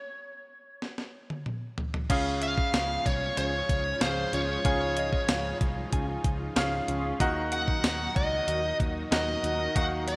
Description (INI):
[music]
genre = 1980s-style pop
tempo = 94 BPM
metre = 4/4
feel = straight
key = Db major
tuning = A4 = 441 Hz
[part]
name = bluesy overdriven lead guitar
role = melody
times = 0.0-10.2 s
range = C5 to Gb5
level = -33 LUFS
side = equal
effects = distortion
[part]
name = clean 12-bit digital drum machine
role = drums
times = 0.8-10.2 s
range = crash cymbal, hi-hat, kick drum, snare drum, tambourine, toms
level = -33 LUFS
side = equal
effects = none
[part]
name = bright grand piano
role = accompaniment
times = 2.1-10.2 s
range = Db3 to Ab5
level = -35 LUFS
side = equal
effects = none
[part]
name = string machine, violas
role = sustained chords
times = 2.1-10.2 s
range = Ab2 to Gb4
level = -42 LUFS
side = equal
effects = ensemble chorus
[part]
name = vintage muted picked electric bass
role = bass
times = 2.1-10.2 s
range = C2 to Eb2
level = -37 LUFS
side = equal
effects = none
[part]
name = mellow synth brass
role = stabs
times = 3.4-9.7 s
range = Db4 to Bb4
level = -41 LUFS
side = equal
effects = chorus, delay
[part]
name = soft synth bell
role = second line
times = 5.0-7.3 s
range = Eb5 to Ab5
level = -42 LUFS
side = equal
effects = chorus, delay
[sound]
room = moderate lush hall reverb, RT60 2.9 s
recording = bright 1980s-style digital production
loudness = -28 LUFS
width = mono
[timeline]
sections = 0.0-2.1 A section; 2.1-10.2 B section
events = stop 0.0-2.1; drum fill 0.8-2.1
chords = 0.0 N.C.; 2.1 Db; 7.2 Ebm